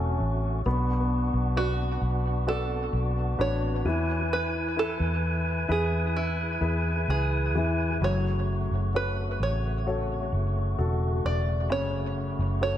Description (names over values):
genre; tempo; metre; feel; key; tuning
pop ballad; 65 BPM; 4/4; straight; F# minor; A4 = 441 Hz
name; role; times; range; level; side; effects
open-back banjo; melody; 0.0-12.8 s; E4 to D5; -32 LUFS; right 2 dB; tape echo
warm baby grand piano; accompaniment; 0.0-12.8 s; C#3 to D5; -32 LUFS; left 3 dB; tape echo
tonewheel organ; sustained chords; 0.0-12.8 s; C#3 to G#5; -33 LUFS; equal; overdrive, fast rotary speaker
vintage muted fingered electric bass; bass; 0.0-12.8 s; E1 to E2; -27 LUFS; equal; none
room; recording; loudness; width
moderate echo chamber reverb, RT60 1.7 s, studio reverb; echo-heavy mix; -25 LUFS; side -11 dB against mid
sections
0.0-12.8 A section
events
none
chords
0.0 F#m; 0.7 Bm; 3.9 E; 8.0 F#m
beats
| 0.66 1.56 2.48 3.39 | 4.31 5.23 6.15 7.08 | 8.02 8.95 9.87 10.79 | 11.70 12.62